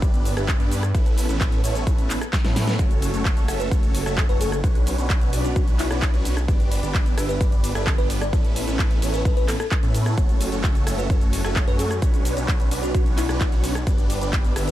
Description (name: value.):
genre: EDM, festival progressive house.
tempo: 130 BPM.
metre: 4/4.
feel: straight.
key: B minor.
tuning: A4 = 440 Hz.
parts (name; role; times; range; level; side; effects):
big supersaw lead; riff; 0.0-14.7 s; A3 to E5; -28 LUFS; right 1 dB; phaser, cassette tape, sidechain pumping, ping-pong delay.
wide detuned saw bass; bass; 0.0-14.7 s; F#1 to A2; -26 LUFS; equal; chorus, sidechain pumping.
big-room dance drum kit; drums; 0.0-14.7 s; cabasa, handclaps, hi-hat, ride cymbal, rim click, snare drum; -30 LUFS; equal; none.
electronic kick drum; drums; 0.0-14.4 s; none; -20 LUFS; equal; none.
bell-like FM electric piano; melody; 3.6-14.7 s; E4 to D5; -30 LUFS; left 2 dB; chorus, phaser, ping-pong delay.
room: little or no reverb.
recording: dark, warm production.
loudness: -19 LUFS.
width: side -14 dB against mid.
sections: 0.0-14.7 A section.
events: drum fill 2.3-2.8.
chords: 0.0 G; 0.9 Aadd9; 2.8 F#m; 4.6 Bmadd9; 6.5 G; 8.3 Aadd9; 10.2 F#m; 12.0 Bmadd9; 13.9 G.